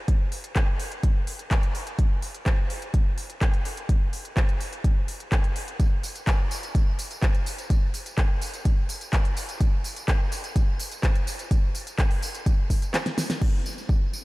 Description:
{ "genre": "house", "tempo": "126 BPM", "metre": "4/4", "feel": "straight", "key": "none", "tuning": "none", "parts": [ { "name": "electronic kick drum", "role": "drums", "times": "0.1-14.0 s", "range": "none", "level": "-22 LUFS", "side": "equal", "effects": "none" }, { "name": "pop drum kit", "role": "drums", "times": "0.1-14.2 s", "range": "crash cymbal, handclaps, hi-hat, snare drum, tambourine", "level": "-31 LUFS", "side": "equal", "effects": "none" } ], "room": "digital ambience", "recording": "none", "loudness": "-23 LUFS", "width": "side -20 dB against mid", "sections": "0.0-13.4 A section", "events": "kick drops out 12.9-13.4; drum fill 12.9-13.4", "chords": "none" }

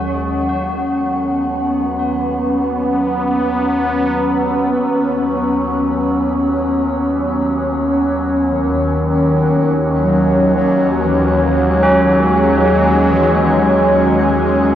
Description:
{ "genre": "dark ambient drone", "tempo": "59 BPM", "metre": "4/4", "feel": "straight", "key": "unclear", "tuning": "A4 = 439 Hz", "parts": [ { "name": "sweeping resonant pad", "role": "sustained chords", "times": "0.0-14.8 s", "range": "Eb2 to Db4", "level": "-15 LUFS", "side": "equal", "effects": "chorus, shimmer reverb" }, { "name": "tubular bells", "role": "arpeggios", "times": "0.0-5.0, 11.8-14.8 s", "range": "Db4 to Ab4", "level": "-22 LUFS", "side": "equal", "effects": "shimmer reverb, ping-pong delay" }, { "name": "overtone-sweeping drone", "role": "drone", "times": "0.0-14.8 s", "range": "Eb2 to Gb3", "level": "-22 LUFS", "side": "equal", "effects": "chorus, built-in reverb" }, { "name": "dark bass clarinet", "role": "melody", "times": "8.5-14.6 s", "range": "Eb3 to Gb3", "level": "-16 LUFS", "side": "equal", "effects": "shimmer reverb, ping-pong delay" } ], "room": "wet huge ambient reverb, RT60 8.0 s", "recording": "worn, warbling old tape, cassette tape, warbly pitch drift", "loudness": "-13 LUFS", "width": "side -11 dB against mid", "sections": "0.0-14.8 A section", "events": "fade-in on synth drone 0.0-14.8", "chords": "0.4 B5; 8.5 Ebm7" }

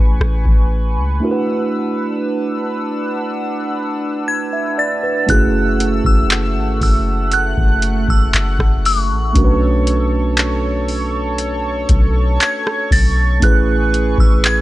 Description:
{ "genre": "contemporary R&B", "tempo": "59 BPM", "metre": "4/4", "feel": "straight", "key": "F# minor", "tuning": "A4 = 442 Hz", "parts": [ { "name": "mellow tine electric piano", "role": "accompaniment", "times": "0.0-14.6 s", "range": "G#3 to E5", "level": "-21 LUFS", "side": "right 3 dB", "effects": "none" }, { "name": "chorused pulse-width pad", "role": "sustained chords", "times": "0.0-14.6 s", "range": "A3 to F#6", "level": "-24 LUFS", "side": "right 1 dB", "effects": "none" }, { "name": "soft 808-style bass", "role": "bass", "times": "0.0-14.6 s", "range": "F#1 to C#2", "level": "-17 LUFS", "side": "equal", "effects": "none" }, { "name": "booming analog drum machine", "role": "drums", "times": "0.2-14.6 s", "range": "handclaps, hi-hat, kick drum, rim click", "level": "-15 LUFS", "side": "equal", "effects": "none" }, { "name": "glassy synth bell", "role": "melody", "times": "4.3-14.6 s", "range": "C#6 to A6", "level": "-20 LUFS", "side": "equal", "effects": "chorus, phaser, tape echo" }, { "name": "worn celesta", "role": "texture", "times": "13.9-14.6 s", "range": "G#4 to B4", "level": "-32 LUFS", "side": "left 1 dB", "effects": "none" } ], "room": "digital ambience", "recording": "dry, gritty hardware recording", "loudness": "-14 LUFS", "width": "side -16 dB against mid", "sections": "0.0-5.3 A section; 5.3-14.6 B section", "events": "break 1.2-5.3", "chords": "0.0 Amaj9; 1.2 D69; 5.3 F#m7; 9.4 Bm9; 13.4 Amaj9" }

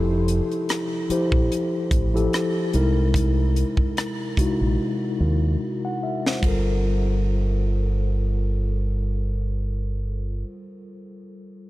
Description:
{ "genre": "R&B, neo-soul", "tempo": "73 BPM", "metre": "4/4", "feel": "swing 55% on 16ths", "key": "G dorian", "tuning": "A4 = 437 Hz", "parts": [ { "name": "mellow tine electric piano", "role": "accompaniment", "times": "0.0-11.7 s", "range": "C3 to F#5", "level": "-25 LUFS", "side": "left 1 dB", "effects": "medium stereo tremolo" }, { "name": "deep dub fingered electric bass", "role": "bass", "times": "0.0-10.4 s", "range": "F1 to D#2", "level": "-22 LUFS", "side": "equal", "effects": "none" }, { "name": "tight funk drum kit", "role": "drums", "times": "0.3-6.6 s", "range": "hi-hat, kick drum, ride cymbal, rim click, snare drum", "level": "-26 LUFS", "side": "equal", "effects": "none" } ], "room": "light reverb", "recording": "none", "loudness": "-20 LUFS", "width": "side -17 dB against mid", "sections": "0.0-6.4 A section; 6.4-9.7 B section", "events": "drum fill 4.8-6.4", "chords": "0.0 Fmaj9; 2.7 C7alt; 6.4 Gm9" }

